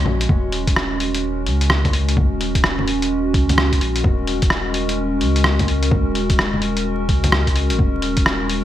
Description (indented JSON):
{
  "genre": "future garage",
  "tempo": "128 BPM",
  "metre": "4/4",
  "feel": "swing 63% on 16ths",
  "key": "Eb minor",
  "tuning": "A4 = 440 Hz",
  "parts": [
    { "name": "warbly tape-like pad", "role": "sustained chords", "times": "0.0-8.6 s", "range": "Ab3 to Bb4", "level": "-22 LUFS", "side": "equal", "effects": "chorus, built-in reverb, sidechain pumping" },
    { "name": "warm sub bass", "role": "bass", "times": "0.0-8.6 s", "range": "Eb1 to Db2", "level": "-22 LUFS", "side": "equal", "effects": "none" },
    { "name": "lo-fi sampler-style drum kit", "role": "drums", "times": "0.1-8.6 s", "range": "bongos, hi-hat, rim click", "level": "-21 LUFS", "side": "left 1 dB", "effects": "gated reverb" },
    { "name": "electronic kick drum", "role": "drums", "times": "0.3-8.2 s", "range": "none", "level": "-20 LUFS", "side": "equal", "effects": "none" }
  ],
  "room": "moderate lush hall reverb, RT60 2.3 s",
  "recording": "bright 1980s-style digital production, vinyl crackle",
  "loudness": "-16 LUFS",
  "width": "side -12 dB against mid",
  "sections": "0.3-8.6 A section",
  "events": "none",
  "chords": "0.3 Ebm7"
}